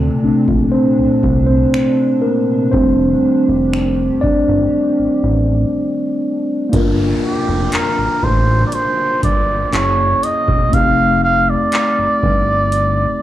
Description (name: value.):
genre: contemporary R&B.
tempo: 60 BPM.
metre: 4/4.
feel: straight.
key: G minor.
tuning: A4 = 440 Hz.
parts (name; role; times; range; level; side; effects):
mellow tine electric piano; accompaniment; 0.0-13.2 s; Eb3 to D5; -16 LUFS; left 1 dB; medium stereo tremolo.
hollow soft pad; sustained chords; 0.0-6.7 s; Bb2 to G4; -23 LUFS; right 2 dB; ensemble chorus, sidechain pumping.
fat analog bass; bass; 0.0-13.1 s; E1 to D2; -18 LUFS; equal; tube saturation.
booming analog drum machine; drums; 0.5-13.0 s; finger snaps, handclaps, hi-hat, kick drum; -19 LUFS; equal; none.
downlifter; sound effects; 6.7-13.2 s; none; -28 LUFS; equal; none.
trumpet with cup mute; melody; 7.2-13.2 s; G4 to F5; -16 LUFS; right 1 dB; analog delay.
room: little or no reverb.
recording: dry, gritty hardware recording, small room reverb.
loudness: -13 LUFS.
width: side -13 dB against mid.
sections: 0.0-6.7 A section; 6.7-13.2 B section.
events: tine electric piano solo 0.0-6.7; break 5.7-6.7.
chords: 0.0 Bbmaj9; 2.7 F13; 6.7 Gm9; 9.7 F#9; 10.7 F9.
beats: 0.73 1.73 | 2.73 3.73 4.73 5.73 | 6.73 7.73 8.73 9.73 | 10.73 11.73 12.73.